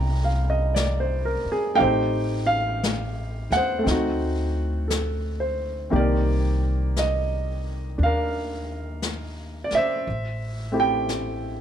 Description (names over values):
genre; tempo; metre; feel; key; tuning
jazz ballad; 58 BPM; 4/4; swing 66% on 8ths; unclear; A4 = 440 Hz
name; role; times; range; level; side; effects
clear baby grand piano; accompaniment; 0.0-11.6 s; D3 to Bb5; -24 LUFS; right 1 dB; none
upright bass; bass; 0.0-11.6 s; A1 to Eb2; -26 LUFS; equal; none
jazz brush drum kit; drums; 0.8-11.6 s; brushed snare drum, hi-hat, snare drum; -32 LUFS; left 3 dB; none
room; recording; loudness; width
little or no reverb; none; -22 LUFS; side -9 dB against mid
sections
0.0-5.9 A section; 5.9-11.6 B section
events
none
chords
0.0 Abmaj9#11; 1.8 Am7b5; 3.8 D7b9; 5.9 Cm7; 10.1 Am7